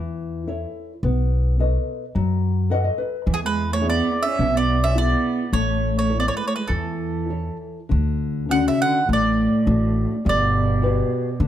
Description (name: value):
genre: fado-style ballad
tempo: 105 BPM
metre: 4/4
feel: rubato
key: A major, D major from 7.9 s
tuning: A4 = 442 Hz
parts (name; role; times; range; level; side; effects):
- nylon-string guitar; accompaniment; 0.0-11.5 s; B2 to F#5; -25 LUFS; left 4 dB; none
- upright bass; bass; 0.0-11.5 s; G1 to F#2; -22 LUFS; equal; none
- mandolin; melody; 3.3-11.5 s; G#4 to F#5; -24 LUFS; right 2 dB; none
- dark cello; second line; 3.3-11.5 s; A2 to C#4; -26 LUFS; right 6 dB; none
room: light reverb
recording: close, detailed microphones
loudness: -19 LUFS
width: side -11 dB against mid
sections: 0.0-7.9 A section; 7.9-11.5 B section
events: nylon-string guitar fill 2.4-3.3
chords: 0.0 A; 1.0 B7; 3.3 E7; 5.5 A; 7.9 Dmaj7; 10.2 Gmaj7